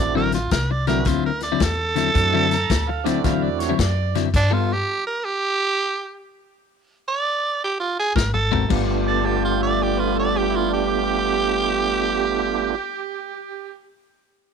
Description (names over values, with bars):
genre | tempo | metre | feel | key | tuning
electric blues shuffle | 110 BPM | 4/4 | swing 65% on 8ths | G mixolydian | A4 = 441 Hz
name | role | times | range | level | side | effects
growling tenor saxophone | melody | 0.0-13.8 s | D4 to D5 | -23 LUFS | right 3 dB | none
tonewheel organ | accompaniment | 0.0-3.8, 8.7-12.8 s | A3 to G4 | -25 LUFS | right 15 dB | slow rotary speaker, overdrive
upright bass | bass | 0.0-4.8, 8.2-12.7 s | G1 to G2 | -25 LUFS | equal | none
electric guitar at the edge of break-up | riff | 0.2-4.7, 8.2-12.8 s | D3 to Bb4 | -25 LUFS | left 15 dB | spring reverb
natural country drum kit | drums | 0.3-4.5, 8.2-8.9 s | crash cymbal, hi-hat, kick drum, snare drum, toms | -25 LUFS | left 4 dB | none
overdriven harmonica | second line | 2.5-4.2, 9.1-13.8 s | D4 to Bb5 | -28 LUFS | right 13 dB | none
room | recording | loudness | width
studio reverb | 1960s-style stereo with parts hard left and right | -19 LUFS | side -6 dB against mid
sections
0.0-8.7 A section; 8.7-13.1 B section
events
stop 4.3-8.2; drum fill 8.2-8.7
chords
0.0 D9; 4.3 G9; 8.2 Ab9; 8.7 G9